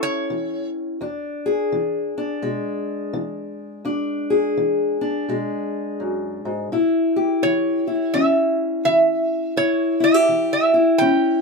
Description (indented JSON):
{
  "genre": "acoustic country blues, solo or duo",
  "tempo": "84 BPM",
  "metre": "4/4",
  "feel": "swing 61% on 8ths",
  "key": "E mixolydian",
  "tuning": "A4 = 441 Hz",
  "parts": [
    { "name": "metal-body resonator slide guitar", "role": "melody", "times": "0.0-0.7, 7.4-11.4 s", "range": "C#5 to G5", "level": "-19 LUFS", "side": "right 3 dB", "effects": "none" },
    { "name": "fingerpicked steel-string acoustic guitar", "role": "accompaniment", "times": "0.0-11.4 s", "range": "E2 to G#4", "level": "-20 LUFS", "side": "left 3 dB", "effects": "none" }
  ],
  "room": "moderate studio reverb, RT60 0.6 s",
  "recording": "band playing live in one room",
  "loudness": "-18 LUFS",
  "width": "side -3 dB against mid",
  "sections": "0.0-11.4 A section",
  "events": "none",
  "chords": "0.0 A7 (rootless); 1.0 E7; 6.7 A7",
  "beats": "0.30 | 1.01 1.72 2.44 3.15 | 3.87 4.58 5.29 6.01 | 6.72 7.44 8.15 8.87 | 9.58 10.29 11.01"
}